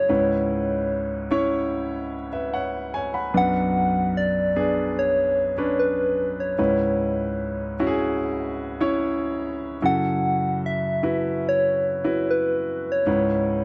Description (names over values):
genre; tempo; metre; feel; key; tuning
pop; 74 BPM; 4/4; straight; unclear; A4 = 441 Hz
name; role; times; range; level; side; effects
soft struck synth lead; melody; 0.0-13.6 s; B4 to F#5; -26 LUFS; equal; chorus, tremolo, slapback echo
clear grand piano; accompaniment; 0.0-13.6 s; B1 to B5; -26 LUFS; equal; none
room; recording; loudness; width
light reverb; dry, close 1970s-style studio recording; -24 LUFS; mono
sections
0.0-13.6 A section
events
none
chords
0.1 C#m7; 3.3 Bmadd9; 6.6 C#m7; 9.8 F#m7; 13.1 C#m7